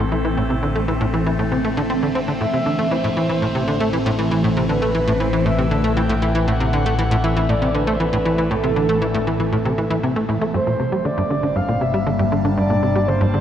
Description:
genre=ambient, sequencer-driven space music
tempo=118 BPM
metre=4/4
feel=straight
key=A minor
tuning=A4 = 441 Hz
part: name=evolving wavetable pad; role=sustained chords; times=0.0-13.4 s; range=E3 to A5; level=-24 LUFS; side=equal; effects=phaser, built-in reverb
part: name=tight sequencer bass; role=riff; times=0.0-13.4 s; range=G2 to C4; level=-21 LUFS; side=equal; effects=analog chorus, cassette tape, analog delay
part: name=analog drone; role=bass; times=0.0-13.4 s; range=G1 to A1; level=-24 LUFS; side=equal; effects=chorus
part: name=wind-like tuned noise texture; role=texture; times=0.0-10.6 s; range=C4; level=-33 LUFS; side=equal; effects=none
part: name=breathy flute-like synth lead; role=melody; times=2.4-13.4 s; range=A4 to G5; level=-23 LUFS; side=equal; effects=wide subtle chorus, analog delay
room=wet cathedral reverb, RT60 5.5 s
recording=in a vast, echoing space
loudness=-17 LUFS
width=side -10 dB against mid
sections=0.0-10.5 A section; 10.5-13.4 B section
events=none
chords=0.0 Am; 10.5 Gmadd9

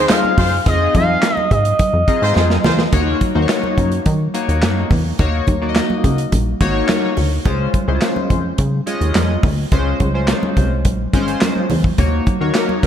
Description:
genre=early-eighties boogie funk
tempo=106 BPM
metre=4/4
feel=straight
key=Eb dorian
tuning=A4 = 438 Hz
part: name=expressive portamento lead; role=melody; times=0.0-2.6 s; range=C5 to F5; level=-18 LUFS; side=equal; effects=chorus, diffuse ambient delay
part: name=warm horn section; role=second line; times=0.0-2.8, 12.5-12.9 s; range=Gb3 to C5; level=-24 LUFS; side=right 2 dB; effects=diffuse ambient delay
part: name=chorused polysynth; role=accompaniment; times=0.0-12.9 s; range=Ab3 to Eb5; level=-20 LUFS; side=left 3 dB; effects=none
part: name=plucky analog bass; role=bass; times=0.0-12.9 s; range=Ab1 to Eb3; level=-18 LUFS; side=equal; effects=none
part: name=modern studio drum kit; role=drums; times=0.1-12.9 s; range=handclaps, hi-hat, kick drum, snare drum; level=-18 LUFS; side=equal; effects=none
part: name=congas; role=percussion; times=0.1-12.9 s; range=none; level=-25 LUFS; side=right 2 dB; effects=none
room=moderate plate reverb, RT60 2.1 s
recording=dreamy mix soaked in reverb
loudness=-14 LUFS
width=side -9 dB against mid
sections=0.0-2.9 A section; 2.9-12.9 B section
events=drum fill 2.4-2.9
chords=0.0 Fm7; 2.9 Ebm7; 7.5 Dbmaj7; 12.0 Ebm7

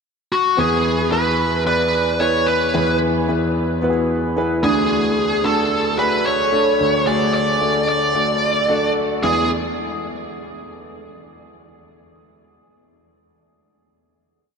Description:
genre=piano-driven pop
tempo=111 BPM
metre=4/4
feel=straight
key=E mixolydian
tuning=A4 = 440 Hz
part: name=high-gain lead guitar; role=melody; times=0.3-9.5 s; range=F#4 to D5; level=-19 LUFS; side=right 1 dB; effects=distortion
part: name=warm concert grand piano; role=accompaniment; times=0.6-9.5 s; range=D2 to D5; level=-19 LUFS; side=equal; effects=analog chorus
room=wet cathedral reverb, RT60 5.2 s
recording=dreamy mix soaked in reverb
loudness=-16 LUFS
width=side -5 dB against mid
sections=0.0-0.6 pickup bar; 0.6-9.2 verse; 9.2-11.4 final chord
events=none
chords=0.0 N.C.; 0.6 E; 4.6 D; 9.2 E

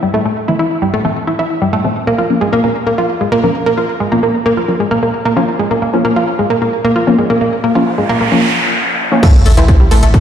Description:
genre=driving peak-time techno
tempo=132 BPM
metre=4/4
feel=straight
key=unclear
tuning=A4 = 440 Hz
part: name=analog pluck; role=riff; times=0.0-10.1 s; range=G3 to F4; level=-13 LUFS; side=equal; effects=chorus, tube saturation, sidechain pumping, digital delay
part: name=filtered dub chord stab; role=stabs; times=0.5-9.6 s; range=E3 to Db4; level=-17 LUFS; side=left 2 dB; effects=lush chorus, sidechain pumping, ping-pong delay
part: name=noise sweep and sub drop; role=sound effects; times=7.7-10.2 s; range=none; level=-16 LUFS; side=equal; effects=none
part: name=electronic kick drum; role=drums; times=9.2-10.2 s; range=none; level=-8 LUFS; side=equal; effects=none
part: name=punchy analog drum machine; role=drums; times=9.2-10.2 s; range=crash cymbal, hi-hat, ride cymbal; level=-25 LUFS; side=left 1 dB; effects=low-pass filter on hats, low-pass filter on cymbals
part: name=saturated sub bass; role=bass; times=9.3-10.1 s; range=A1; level=-11 LUFS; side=equal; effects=tube saturation, sidechain pumping, low-pass filter
room=wet lush hall reverb, RT60 2.0 s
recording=played on a big sound system in a bare room, stone room reverb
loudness=-11 LUFS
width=side -9 dB against mid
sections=0.0-9.2 A section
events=filter sweep on synth stab 0.0-9.2; noise sweep 7.7-9.2; impact 9.2-10.2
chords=0.0 Am; 2.0 Bbm; 9.2 Am

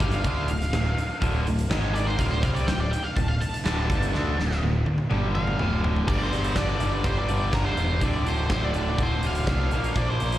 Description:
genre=classic rock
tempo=124 BPM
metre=4/4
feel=straight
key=D minor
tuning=A4 = 440 Hz
part: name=octave-fuzz lead guitar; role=melody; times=0.0-10.4 s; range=Bb4 to A5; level=-31 LUFS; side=equal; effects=distortion, tape echo
part: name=overdriven electric guitar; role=riff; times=0.0-10.4 s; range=D2 to D4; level=-31 LUFS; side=right 6 dB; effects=slapback echo
part: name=raw garage guitar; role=riff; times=0.0-10.4 s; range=D2 to D4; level=-32 LUFS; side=left 9 dB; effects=overdrive, slapback echo
part: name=growling picked electric bass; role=bass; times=0.0-10.4 s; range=D1 to D2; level=-26 LUFS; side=equal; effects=overdrive
part: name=huge arena drum kit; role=drums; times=0.0-10.4 s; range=crash cymbal, hi-hat, kick drum, snare drum, toms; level=-28 LUFS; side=equal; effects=none
room=little or no reverb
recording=live gig heard through the venue's PA, recital hall reverb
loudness=-22 LUFS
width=side -13 dB against mid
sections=0.0-6.1 A section; 6.1-10.4 B section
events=lead electric guitar solo 0.0-6.1; drum fill 4.1-6.1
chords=0.0 Dm; 1.7 G#5; 2.2 D5; 5.1 G5; 5.6 Dm; 6.1 G5; 8.0 Dm7; 9.7 Bb5

